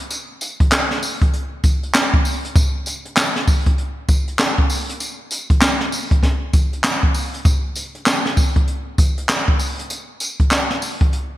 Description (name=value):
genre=R&B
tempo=98 BPM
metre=4/4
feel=swing 62% on 16ths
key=none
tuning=none
part: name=jazz brush drum kit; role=drums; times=0.1-11.3 s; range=handclaps, hi-hat, kick drum, snare drum, tambourine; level=-16 LUFS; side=equal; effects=none
room=light reverb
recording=bright 1980s-style digital production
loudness=-16 LUFS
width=side -15 dB against mid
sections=0.0-11.4 A section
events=none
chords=none